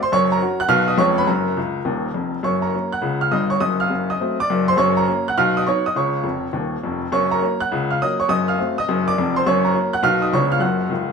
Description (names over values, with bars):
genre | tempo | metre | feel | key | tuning
jazz, stride piano | 206 BPM | 4/4 | swing 64% on 8ths | F# major | A4 = 441 Hz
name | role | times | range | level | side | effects
clear upright piano | solo | 0.0-11.1 s | C#1 to F#6 | -17 LUFS | equal | none
room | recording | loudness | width
moderate stone room reverb, RT60 1.2 s | band playing live in one room | -17 LUFS | side -5 dB against mid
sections
0.0-2.4 A section; 2.4-11.1 A section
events
upright piano fill 1.6-2.4, 6.2-7.1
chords
0.1 F#; 0.7 B; 1.0 C#7/E#; 1.3 F#; 3.6 F#dim7; 4.8 F#; 5.4 B; 5.9 C#; 7.1 F#; 8.3 F#dim7; 9.4 F#; 10.0 B; 10.3 C#7b9; 10.6 F#5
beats
| 0.11 0.40 0.69 0.98 | 1.28 1.57 1.86 2.15 | 2.44 2.73 3.03 3.32 | 3.61 3.90 4.20 4.49 | 4.78 5.07 5.36 5.65 | 5.95 6.24 6.53 6.82 | 7.11 7.40 7.70 7.99 | 8.28 8.57 8.86 9.15 | 9.45 9.74 10.03 10.32 | 10.61 10.90